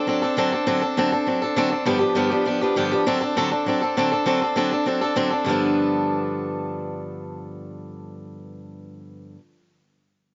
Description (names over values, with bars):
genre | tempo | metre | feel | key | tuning
rock | 200 BPM | 4/4 | straight | G mixolydian | A4 = 440 Hz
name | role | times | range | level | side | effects
picked swing-style acoustic guitar | solo | 0.0-9.4 s | G2 to A4 | -23 LUFS | equal | none
room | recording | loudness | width
light reverb | nothing above 7.5 kHz | -22 LUFS | mono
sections
0.0-4.3 A section; 4.3-5.5 B section; 5.5-7.9 C section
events
none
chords
0.0 D7; 1.9 G7; 3.1 D7; 5.5 G9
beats
0.08 0.38 | 0.68 0.98 1.28 1.58 | 1.88 2.17 2.47 2.77 | 3.07 3.37 3.67 3.97 | 4.27 4.57 4.87 5.17 | 5.47 5.77 6.07 6.37 | 6.67 6.97 7.27 7.57